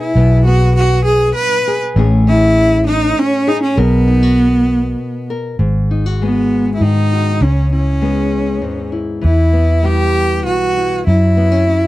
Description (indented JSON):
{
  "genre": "acoustic folk-pop ballad",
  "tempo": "99 BPM",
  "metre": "3/4",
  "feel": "straight",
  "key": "B mixolydian",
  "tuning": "A4 = 439 Hz",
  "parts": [
    { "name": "bright cello", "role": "melody", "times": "0.0-11.9 s", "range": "B3 to B4", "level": "-15 LUFS", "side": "right 1 dB", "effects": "none" },
    { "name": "nylon-string guitar", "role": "accompaniment", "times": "0.0-11.9 s", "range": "G#2 to A#4", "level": "-20 LUFS", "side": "left 4 dB", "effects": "none" },
    { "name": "vintage muted fingered electric bass", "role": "bass", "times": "0.2-11.9 s", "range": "G#1 to G#2", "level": "-14 LUFS", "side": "equal", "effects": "none" }
  ],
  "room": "little or no reverb",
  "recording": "dry, close 1970s-style studio recording",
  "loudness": "-11 LUFS",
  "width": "side -17 dB against mid",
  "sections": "0.0-5.6 A section; 5.6-11.9 B section",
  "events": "none",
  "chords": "0.0 B5; 2.0 Amaj7; 3.8 Bmaj7(no3); 5.6 G#m7; 7.4 C#m7; 9.2 Em; 11.1 F#5"
}